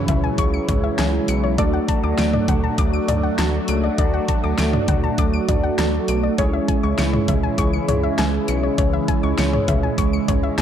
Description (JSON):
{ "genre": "synth-pop", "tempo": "100 BPM", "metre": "4/4", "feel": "straight", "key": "unclear", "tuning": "A4 = 444 Hz", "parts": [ { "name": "funky polysynth comp", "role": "accompaniment", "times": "0.0-10.6 s", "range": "G#3 to D5", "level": "-24 LUFS", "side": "right 2 dB", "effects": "chorus" }, { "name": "phased analog pad", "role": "sustained chords", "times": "0.0-10.6 s", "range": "C#3 to F#4", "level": "-25 LUFS", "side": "right 1 dB", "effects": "phaser, chorus" }, { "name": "soft round pluck", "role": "arpeggios", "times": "0.0-10.6 s", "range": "C#5 to D7", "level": "-27 LUFS", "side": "left 8 dB", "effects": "chorus, slapback echo" }, { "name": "rubbery square bass", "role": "bass", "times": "0.1-10.6 s", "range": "B1 to D2", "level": "-23 LUFS", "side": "equal", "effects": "none" }, { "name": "pop drum kit", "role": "drums", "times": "0.1-10.6 s", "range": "hi-hat, kick drum, snare drum, toms", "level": "-22 LUFS", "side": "equal", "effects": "overdrive" } ], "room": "moderate lush hall reverb, RT60 1.9 s, digital ambience", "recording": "dark, warm production", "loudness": "-17 LUFS", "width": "side -9 dB against mid", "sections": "0.0-10.6 A section", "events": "none", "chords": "0.0 C#m; 1.6 D; 6.4 C#m" }